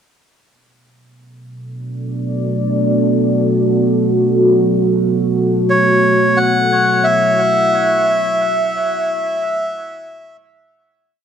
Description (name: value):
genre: ambient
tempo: free time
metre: none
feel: none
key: B minor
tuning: A4 = 439 Hz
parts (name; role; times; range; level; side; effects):
- deep dark ambient pad; sustained chords; 1.8-11.1 s; B3 to E5; -15 LUFS; equal; chorus, built-in reverb
- melodica; melody; 5.7-10.4 s; C#5 to F#5; -14 LUFS; equal; dub echo
room: moderate spring reverb, RT60 2.8 s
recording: dark, warm production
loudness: -13 LUFS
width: side -8 dB against mid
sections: 0.3-11.1 groove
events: fade-out 7.5-11.1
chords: 0.3 Bm7; 5.7 F#m7/B